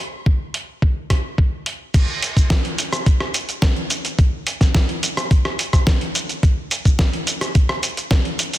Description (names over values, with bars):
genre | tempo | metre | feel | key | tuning
nu-disco | 107 BPM | 4/4 | straight | none | none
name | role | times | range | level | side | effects
electronic kick drum | drums | 0.3-8.2 s | none | -16 LUFS | equal | none
dusty soul sampler-style drum kit | drums | 0.5-8.6 s | crash cymbal, hi-hat, rim click, shaker, snare drum | -22 LUFS | equal | none
room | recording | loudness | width
little or no reverb | dense, heavily limited modern master | -17 LUFS | side -15 dB against mid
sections
0.0-1.9 A section; 1.9-8.6 B section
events
drop 1.9-8.6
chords
none